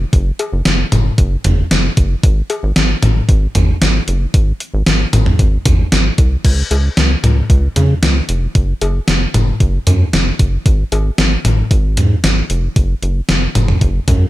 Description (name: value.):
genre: synth-pop.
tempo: 114 BPM.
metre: 4/4.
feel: straight.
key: unclear.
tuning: A4 = 440 Hz.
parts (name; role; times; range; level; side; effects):
rubbery square bass; bass; 0.0-14.3 s; F1 to Db3; -15 LUFS; equal; none.
gated 80s digital drum machine; drums; 0.1-14.2 s; cowbell, crash cymbal, hi-hat, kick drum, snare drum, toms; -13 LUFS; equal; gated reverb, gated reverb snare, overdrive.
room: digital ambience.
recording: none.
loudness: -12 LUFS.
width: side -16 dB against mid.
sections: 0.0-6.4 A section; 6.4-14.3 B section.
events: none.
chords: none.